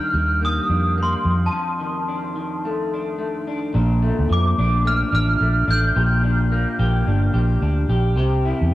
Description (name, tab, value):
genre	indie pop, bedroom pop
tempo	108 BPM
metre	4/4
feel	swing 60% on 16ths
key	Bb major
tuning	A4 = 440 Hz
part	glockenspiel with hard plastic mallets	melody	0.0-7.3 s	A5 to G6	-24 LUFS	equal	ensemble chorus, cassette tape, analog delay
part	electric guitar through a small old amp	accompaniment	0.0-8.7 s	F2 to G4	-24 LUFS	left 2 dB	lush chorus, vibrato effect, cassette tape
part	vintage muted fingered electric bass	bass	0.1-8.7 s	G1 to F2	-19 LUFS	equal	none
room	light reverb, studio reverb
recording	home recording on cassette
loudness	-18 LUFS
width	side -15 dB against mid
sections	0.0-3.7 A section; 3.7-8.7 B section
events	break 1.5-3.7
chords	0.0 Ebmaj7; 1.3 F6; 3.7 Bbmaj7; 6.0 Gm; 8.2 C7